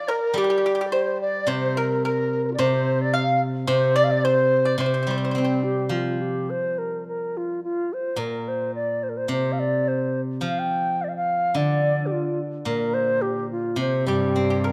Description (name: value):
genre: chinese traditional, Chinese chamber ensemble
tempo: 107 BPM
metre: 2/4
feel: rubato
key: C shang mode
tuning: A4 = 439 Hz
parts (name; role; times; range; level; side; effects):
- bright reedy low xiao; melody; 0.0-14.7 s; C4 to G5; -27 LUFS; equal; none
- large dizi; second line; 0.0-5.6 s; F4 to F5; -29 LUFS; equal; none
- pipa; second line; 0.0-5.5, 14.1-14.7 s; G4 to F5; -31 LUFS; equal; none
- steel-string zither; accompaniment; 0.3-14.7 s; Bb2 to C4; -28 LUFS; equal; none
- rich cello; second line; 14.1-14.7 s; G2; -28 LUFS; equal; none
room: moderate recital hall reverb, RT60 1.6 s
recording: none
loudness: -23 LUFS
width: mono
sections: 0.0-5.9 A section; 5.9-14.7 B section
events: none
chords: none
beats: | 0.36 0.92 | 1.49 2.05 | 2.60 3.15 | 3.69 4.24 | 4.79 5.35 | 5.91 6.49 | 7.06 7.63 | 8.19 8.74 | 9.30 9.87 | 10.44 11.00 | 11.56 12.12 | 12.67 13.22 | 13.78 14.36